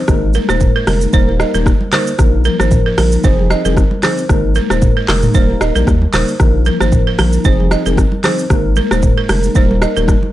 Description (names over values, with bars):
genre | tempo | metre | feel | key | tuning
afrobeats | 114 BPM | 4/4 | swing 55% on 16ths | unclear | A4 = 440 Hz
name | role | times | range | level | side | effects
mellow tine electric piano | accompaniment | 0.1-10.1 s | F3 to Bb4 | -18 LUFS | left 3 dB | phaser
saturated sub bass | bass | 0.1-10.2 s | Eb1 to Eb2 | -16 LUFS | equal | none
afro-pop drum kit | drums | 0.1-10.2 s | handclaps, hi-hat, kick drum, rim click, shaker, toms | -14 LUFS | equal | none
congas | percussion | 0.1-10.3 s | none | -25 LUFS | right 1 dB | none
balafon | riff | 0.3-10.0 s | Bb4 to Eb5 | -19 LUFS | right 6 dB | analog delay
room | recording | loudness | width
digital ambience | dry, gritty hardware recording, transformer saturation | -11 LUFS | side -14 dB against mid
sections
0.0-10.3 A section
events
none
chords
0.1 Absus2; 1.1 Eb; 2.2 Bbsus4; 3.2 Fm7; 4.3 Absus2; 5.3 Eb; 6.4 Bbsus4; 7.5 Fm7; 8.5 Absus2; 9.6 Eb